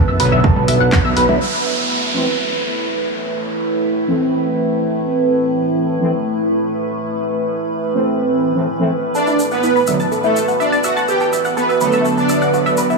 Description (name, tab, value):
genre	melodic techno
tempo	124 BPM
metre	4/4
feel	straight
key	A dorian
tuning	A4 = 440 Hz
part	evolving wavetable pad	sustained chords	0.0-13.0 s	A3 to B4	-20 LUFS	right 2 dB	chorus, built-in reverb, phaser, sidechain pumping
part	tight sequenced synth	arpeggios	0.0-1.4, 9.1-13.0 s	E4 to B5	-21 LUFS	equal	chorus, phaser, sidechain pumping, tape echo
part	fat analog bass	bass	0.1-1.4 s	F#1 to B1	-17 LUFS	equal	sidechain pumping
part	analog synth brass	stabs	0.2-13.0 s	D3 to C4	-20 LUFS	right 1 dB	chorus, cassette tape, sidechain pumping, tape echo
part	punchy analog drum machine	drums	0.2-1.4 s	congas, handclaps, hi-hat	-26 LUFS	left 1 dB	sidechain pumping on hats, sidechain pumping on perc
part	electronic kick drum	drums	0.4-1.0 s	none	-15 LUFS	right 1 dB	none
part	overtone-sweeping drone	drone	2.2-13.0 s	A2 to E3	-28 LUFS	right 1 dB	chorus, built-in reverb, sidechain pumping
part	downlifter	sound effects	1.4-5.3 s	none	-24 LUFS	right 2 dB	none
part	soft supersaw	melody	9.1-12.4 s	A3 to G4	-20 LUFS	equal	ensemble chorus, sidechain pumping, tape echo
part	tube shaker	percussion	9.1-13.0 s	none	-30 LUFS	left 3 dB	none
part	soft supersaw	second line	9.2-12.4 s	A4 to G5	-22 LUFS	right 3 dB	sidechain pumping, tape echo
room	moderate huge ambient reverb, RT60 6.8 s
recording	small room ambience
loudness	-14 LUFS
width	side -2 dB against mid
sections	0.0-1.4 A section; 1.4-13.0 B section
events	filter sweep on analog polysynth 0.0-1.4; band accent 0.9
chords	0.0 Bm; 1.4 Am; 9.2 Bm